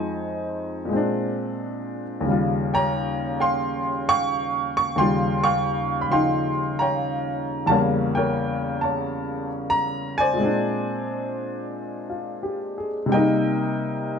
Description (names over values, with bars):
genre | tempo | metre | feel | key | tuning
solo jazz | 88 BPM | 4/4 | swing 69% on 8ths | unclear | A4 = 445 Hz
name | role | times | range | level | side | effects
warm upright piano | solo | 0.0-14.2 s | Eb2 to Db6 | -22 LUFS | equal | none
room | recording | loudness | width
moderate studio reverb, RT60 0.8 s | dark, warm production, nothing above 10.4 kHz | -21 LUFS | side -6 dB against mid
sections
0.0-14.2 A section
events
none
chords
0.0 Fm7; 0.9 Bb9; 2.3 Eb9; 7.7 Edim7; 10.4 Bb9; 13.1 Cm7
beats
0.22 0.90 1.57 | 2.25 2.93 3.61 4.29 | 4.97 5.64 6.32 7.00 | 7.68 8.36 9.04 9.72 | 10.39 11.07 11.75 12.43 | 13.11 13.79